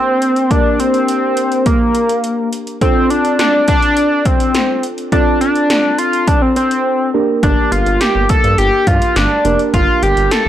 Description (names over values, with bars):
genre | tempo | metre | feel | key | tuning
synth-pop | 104 BPM | 4/4 | straight | G minor | A4 = 440 Hz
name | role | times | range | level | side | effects
octave-doubled lead | melody | 0.0-10.5 s | Bb3 to A4 | -14 LUFS | equal | chorus
muted felt-like synth keys | accompaniment | 0.0-10.5 s | Bb3 to Bb4 | -20 LUFS | right 1 dB | chorus
80s electronic pad drums | drums | 0.2-10.4 s | hi-hat, kick drum, snare drum | -17 LUFS | equal | none
smooth synth bass | bass | 7.4-10.5 s | F1 to G2 | -18 LUFS | equal | none
room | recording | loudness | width
digital ambience | dry, gritty hardware recording | -11 LUFS | side -11 dB against mid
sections
0.0-10.5 A section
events
silent gap 6.9-7.4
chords
0.0 Gm; 2.8 Dm7; 7.1 Gm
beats
| 0.51 1.08 1.66 2.24 | 2.81 3.39 3.97 4.55 | 5.12 5.70 6.28 6.85 | 7.43 8.01 8.58 9.16 | 9.74 10.31